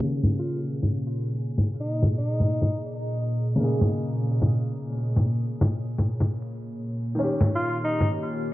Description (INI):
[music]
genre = future garage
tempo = 134 BPM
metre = 4/4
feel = swing 66% on 16ths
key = unclear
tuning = A4 = 440 Hz
[part]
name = felt-muted upright piano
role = accompaniment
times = 0.0-8.5 s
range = Db3 to Ab4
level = -30 LUFS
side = equal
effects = analog delay
[part]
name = warbly tape-like pad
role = sustained chords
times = 0.0-8.5 s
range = Bb2 to Db5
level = -28 LUFS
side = equal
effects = chorus, built-in reverb
[part]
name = bongos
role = drums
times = 0.2-8.1 s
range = none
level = -23 LUFS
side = equal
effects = none
[part]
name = bright alto saxophone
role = melody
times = 0.4-2.8, 7.6-8.1 s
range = Eb4 to F4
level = -32 LUFS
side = equal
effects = analog delay
[sound]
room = light reverb, digital ambience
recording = vinyl crackle, low-pass filter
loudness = -23 LUFS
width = side -16 dB against mid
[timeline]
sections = 0.0-8.5 A section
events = filter sweep 0.0-8.5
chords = 0.0 Bbm7; 7.2 Eb7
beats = | 0.01 0.46 0.91 1.36 | 1.80 2.25 2.70 3.15 | 3.60 4.04 4.49 4.94 | 5.39 5.83 6.28 6.73 | 7.18 7.62 8.07 8.52